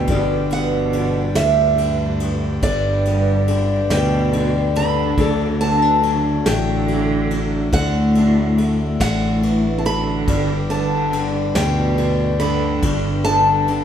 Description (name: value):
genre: acoustic folk duo or small band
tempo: 47 BPM (dotted quarters)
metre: 6/8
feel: straight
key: G major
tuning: A4 = 440 Hz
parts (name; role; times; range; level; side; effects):
- picked old ladder-braced acoustic guitar; melody; 0.0-13.8 s; D5 to B5; -22 LUFS; equal; none
- warm cello; second line; 0.0-13.8 s; G2 to D3; -22 LUFS; right 2 dB; none
- nylon-string guitar; accompaniment; 0.0-13.8 s; G2 to A4; -23 LUFS; left 3 dB; none
- hand-pumped harmonium; sustained chords; 0.0-13.8 s; D3 to D5; -31 LUFS; left 1 dB; none
- fingered electric bass; bass; 0.0-13.8 s; G1 to D2; -22 LUFS; equal; none
- soft brush drum kit; drums; 0.1-13.8 s; kick drum, ride cymbal, snare drum; -27 LUFS; equal; none
room: wet large studio reverb, RT60 0.9 s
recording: band playing live in one room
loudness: -16 LUFS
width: side -9 dB against mid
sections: 0.1-13.8 A section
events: none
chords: 0.1 G; 5.2 D; 10.3 G